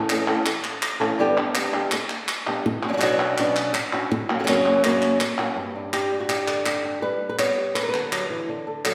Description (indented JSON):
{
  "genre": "flamenco",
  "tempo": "164 BPM",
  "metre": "4/4",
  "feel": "straight",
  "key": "unclear",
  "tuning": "A4 = 443 Hz",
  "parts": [
    { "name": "flamenco guitar", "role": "melody", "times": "0.0-8.9 s", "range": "F#2 to C#5", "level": "-25 LUFS", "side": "equal", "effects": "none" },
    { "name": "palmas hand claps", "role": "percussion", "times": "0.1-8.9 s", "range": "none", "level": "-28 LUFS", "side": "equal", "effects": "none" }
  ],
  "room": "wet recital hall reverb, RT60 1.6 s",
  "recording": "recorded in a church or concert hall",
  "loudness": "-23 LUFS",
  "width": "mono",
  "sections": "0.0-5.6 A section; 5.6-8.9 B section",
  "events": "none",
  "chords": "0.0 A; 1.2 G; 2.7 Bmadd9; 4.1 F#; 5.6 G",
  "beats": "0.10 0.46 0.83 | 1.19 1.56 1.92 2.29 | 2.65 3.02 3.38 3.75 | 4.11 4.47 4.84 5.20 | 5.57 5.93 6.30 6.66 | 7.03 7.39 7.76 8.12 | 8.49 8.85"
}